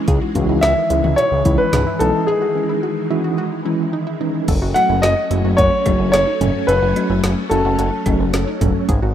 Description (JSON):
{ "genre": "synth-pop", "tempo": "109 BPM", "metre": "4/4", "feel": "straight", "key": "F# dorian", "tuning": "A4 = 440 Hz", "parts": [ { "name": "mellow tine electric piano", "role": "accompaniment", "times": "0.0-8.9 s", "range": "E3 to A4", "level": "-23 LUFS", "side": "right 1 dB", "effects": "medium stereo tremolo" }, { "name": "phased string machine", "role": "sustained chords", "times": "0.0-9.1 s", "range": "D#3 to F#4", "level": "-24 LUFS", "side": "left 1 dB", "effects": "ensemble chorus, phaser" }, { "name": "wide unison pluck", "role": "arpeggios", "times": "0.1-9.1 s", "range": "C#4 to A4", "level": "-29 LUFS", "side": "right 2 dB", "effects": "tape echo" }, { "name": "fat analog bass", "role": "bass", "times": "0.1-9.1 s", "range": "F#1 to C#2", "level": "-20 LUFS", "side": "equal", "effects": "none" }, { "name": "deep house drum kit", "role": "drums", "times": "0.1-9.0 s", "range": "cowbell, crash cymbal, hi-hat, kick drum, snare drum, toms", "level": "-22 LUFS", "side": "equal", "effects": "none" }, { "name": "warm grand piano", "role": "melody", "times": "0.6-8.6 s", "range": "G#4 to F#5", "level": "-18 LUFS", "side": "left 1 dB", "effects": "tape echo" } ], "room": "light reverb", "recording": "rough home demo mix", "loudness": "-15 LUFS", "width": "side -10 dB against mid", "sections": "0.0-4.5 A section; 4.5-9.1 B section", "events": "break 2.3-4.5", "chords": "0.0 C#m; 4.5 F#m" }